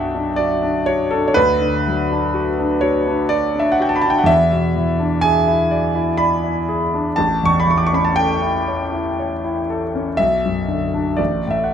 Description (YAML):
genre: classical, romantic nocturne for solo piano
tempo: 61 BPM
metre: 3/4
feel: rubato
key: unclear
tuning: A4 = 443 Hz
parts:
  - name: clear concert grand piano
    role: solo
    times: 0.0-11.7 s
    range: A1 to D6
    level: -16 LUFS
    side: equal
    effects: none
room: moderate recital hall reverb, RT60 1.4 s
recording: none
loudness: -15 LUFS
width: side -8 dB against mid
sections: 0.0-11.7 A section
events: none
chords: 0.0 Bm; 1.4 Bm/D; 4.3 E7; 7.2 A7; 10.2 Bm; 11.2 D5/A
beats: 0.39 | 1.36 2.34 3.32 | 4.28 5.23 6.18 | 7.17 8.17 9.17 | 10.17 11.19